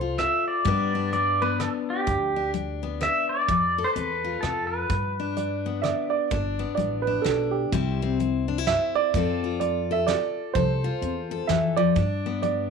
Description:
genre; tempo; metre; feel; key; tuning
honky-tonk and classic country; 127 BPM; 3/4; swing 61% on 8ths; G mixolydian; A4 = 440 Hz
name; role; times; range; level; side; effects
pedal steel guitar; melody; 0.0-6.1 s; G4 to E5; -25 LUFS; right 1 dB; slapback echo
picked steel-string acoustic guitar; accompaniment; 0.0-12.7 s; G2 to B4; -28 LUFS; left 10 dB; none
upright bass; bass; 0.0-12.7 s; G1 to G2; -31 LUFS; equal; none
soft brush drum kit; drums; 0.2-12.6 s; hi-hat, kick drum, rim click, snare drum; -30 LUFS; right 3 dB; none
dark upright piano; second line; 5.4-12.7 s; G4 to E5; -26 LUFS; right 11 dB; none
room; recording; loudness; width
light reverb, small room reverb; 1960s-style stereo with parts hard left and right; -22 LUFS; side -5 dB against mid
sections
0.0-6.3 A section; 6.3-12.7 A section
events
upright piano solo 6.3-12.7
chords
0.0 F; 0.7 G; 3.5 F; 4.9 G; 7.7 C; 9.1 F; 12.0 G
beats
0.18 | 0.65 1.12 1.60 | 2.07 2.54 3.01 | 3.48 3.95 4.42 | 4.90 5.37 5.84 | 6.31 6.78 7.25 | 7.72 8.20 8.67 | 9.14 9.61 10.08 | 10.55 11.02 11.49 | 11.96 12.44

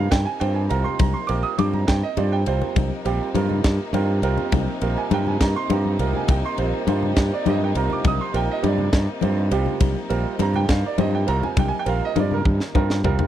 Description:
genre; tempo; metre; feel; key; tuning
electric jazz fusion; 68 BPM (dotted quarters); 6/8; straight; C minor; A4 = 444 Hz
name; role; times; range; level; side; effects
clear baby grand piano; accompaniment; 0.0-13.3 s; G3 to Eb6; -25 LUFS; right 8 dB; none
warm chamber string section; sustained chords; 0.0-13.3 s; C3 to Eb4; -31 LUFS; left 2 dB; none
modern bright fingered electric bass; bass; 0.0-13.2 s; Bb1 to G2; -22 LUFS; equal; none
tight funk drum kit; drums; 0.1-13.3 s; kick drum, ride cymbal, snare drum, toms; -22 LUFS; equal; none
congas; percussion; 0.1-13.3 s; none; -27 LUFS; left 11 dB; none
room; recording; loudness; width
studio reverb; dry, close 1970s-style studio recording; -19 LUFS; side -11 dB against mid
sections
0.0-13.3 A section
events
drum fill 5.8-6.3, 12.5-13.3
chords
0.0 Cm7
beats
0.12 | 1.00 1.88 | 2.76 3.65 | 4.53 5.41 | 6.29 7.17 | 8.05 8.93 | 9.81 10.70 | 11.58 12.46

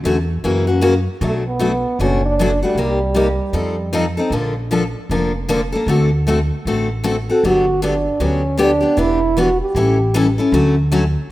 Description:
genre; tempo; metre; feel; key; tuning
acoustic string swing (jazz manouche); 154 BPM; 4/4; swing 61% on 8ths; unclear; A4 = 439 Hz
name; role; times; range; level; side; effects
upright bass; bass; 0.0-11.1 s; E1 to F#2; -20 LUFS; equal; none
picked steel-string acoustic guitar; accompaniment; 0.1-11.0 s; B2 to A4; -18 LUFS; left 2 dB; none
warm French horn; melody; 1.2-4.1, 7.3-10.3 s; G3 to A4; -18 LUFS; right 2 dB; none
room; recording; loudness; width
light reverb, small room ambience; rough home demo mix; -15 LUFS; side -16 dB against mid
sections
0.0-1.2 A section; 1.2-11.3 B section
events
none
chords
0.4 F#7; 1.2 Bm7; 2.8 Cm7; 3.5 F7; 4.3 Bbmaj7; 5.9 D7; 7.4 Gmaj7; 9.0 Em7; 9.8 A7; 10.5 Dmaj7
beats
0.04 0.43 0.82 | 1.21 1.60 1.99 2.38 | 2.77 3.15 3.54 3.93 | 4.32 4.71 5.10 5.49 | 5.88 6.26 6.65 7.04 | 7.43 7.82 8.20 8.59 | 8.98 9.37 9.76 10.14 | 10.53 10.92

